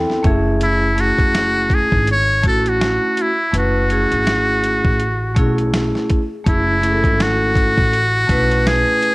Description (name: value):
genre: hip hop, jazz-hop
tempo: 82 BPM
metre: 4/4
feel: swing 59% on 16ths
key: F# minor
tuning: A4 = 439 Hz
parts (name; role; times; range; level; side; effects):
- vibraphone with medium hard mallets; accompaniment; 0.0-9.1 s; A3 to G5; -20 LUFS; equal; none
- upright bass; bass; 0.0-8.8 s; F#1 to B1; -20 LUFS; equal; tube saturation
- boom bap sampler-style drum kit; drums; 0.1-9.1 s; hi-hat, kick drum, snare drum; -19 LUFS; equal; cassette tape
- trumpet with metal mute; melody; 0.6-9.1 s; E4 to C#5; -17 LUFS; equal; cassette tape
room: little or no reverb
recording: home recording on cassette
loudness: -14 LUFS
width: side -22 dB against mid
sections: 0.0-6.5 A section; 6.5-9.1 A section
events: vibraphone fill 0.0-0.6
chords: 0.2 F#m9